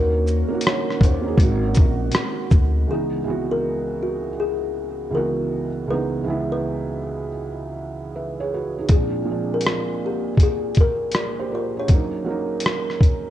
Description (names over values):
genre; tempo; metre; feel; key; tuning
lo-fi hip hop; 80 BPM; 4/4; swing 63% on 16ths; C# dorian; A4 = 440 Hz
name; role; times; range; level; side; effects
kalimba; melody; 0.0-13.3 s; F#4 to C#5; -26 LUFS; left 3 dB; low-pass filter, tape echo
felt-muted upright piano; accompaniment; 0.0-13.3 s; C#2 to E5; -25 LUFS; right 4 dB; cassette tape, low-pass filter
deep dark ambient pad; sustained chords; 0.1-2.9 s; D#3 to F#4; -32 LUFS; equal; chorus, built-in reverb, low-pass filter
upright bass; bass; 0.0-2.8 s; G#1 to D#2; -22 LUFS; equal; none
lo-fi sampler-style drum kit; drums; 0.3-2.7, 8.9-13.2 s; hi-hat, kick drum, rim click, shaker; -18 LUFS; equal; vintage 12-bit sampler grit
room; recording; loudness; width
small room ambience; cassette tape; -19 LUFS; side -12 dB against mid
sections
0.0-2.9 A section; 2.9-13.3 B section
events
none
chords
0.0 D#m7; 1.4 G#7; 2.9 C#m7; 8.9 A#7; 11.9 D#m7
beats
0.64 1.39 2.14 | 2.89 3.64 4.39 5.14 | 5.89 6.64 7.39 8.14 | 8.89 9.64 10.39 11.14 | 11.89 12.64